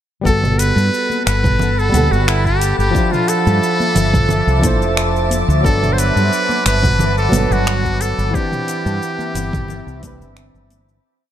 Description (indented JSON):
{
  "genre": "sunset chillout",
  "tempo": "89 BPM",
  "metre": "4/4",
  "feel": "straight",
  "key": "G major",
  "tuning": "A4 = 440 Hz",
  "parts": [
    { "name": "flamenco guitar", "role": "accompaniment", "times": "0.2-11.0 s", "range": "E3 to F#5", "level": "-22 LUFS", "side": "moving between left 5 dB and right 4 dB", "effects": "auto-pan, low-pass filter, tape echo" },
    { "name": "trumpet with metal mute", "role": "melody", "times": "0.3-10.4 s", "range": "E4 to C5", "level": "-20 LUFS", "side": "equal", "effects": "ping-pong delay" },
    { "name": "shimmering ambient pad", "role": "sustained chords", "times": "1.0-11.0 s", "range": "C4 to D6", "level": "-24 LUFS", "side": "equal", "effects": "chorus, built-in reverb" },
    { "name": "mellow fretless electric bass", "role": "bass", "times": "0.3-11.0 s", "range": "F1 to G2", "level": "-17 LUFS", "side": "equal", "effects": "none" },
    { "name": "deep house drum kit", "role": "drums", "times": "0.3-11.0 s", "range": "finger snaps, hi-hat, shaker, toms", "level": "-23 LUFS", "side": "right 1 dB", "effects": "overdrive, studio reverb" },
    { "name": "electronic kick drum", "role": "drums", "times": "0.3-10.2 s", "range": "none", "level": "-19 LUFS", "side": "equal", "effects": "overdrive, studio reverb" },
    { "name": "drifting glass-harmonics texture", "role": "texture", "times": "1.2-11.1 s", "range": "A5 to A6", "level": "-29 LUFS", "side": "left 4 dB", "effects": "chorus, built-in reverb" },
    { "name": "congas", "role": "percussion", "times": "1.1-10.8 s", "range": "none", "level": "-24 LUFS", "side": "right 1 dB", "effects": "none" }
  ],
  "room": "light reverb",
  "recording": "none",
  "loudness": "-13 LUFS",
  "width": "side -10 dB against mid",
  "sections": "0.3-11.0 groove",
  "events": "fade-out 7.4-11.0",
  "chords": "0.3 Gmaj9; 2.9 Dm9/G; 5.6 Bm7/G; 8.3 Cmaj9/G"
}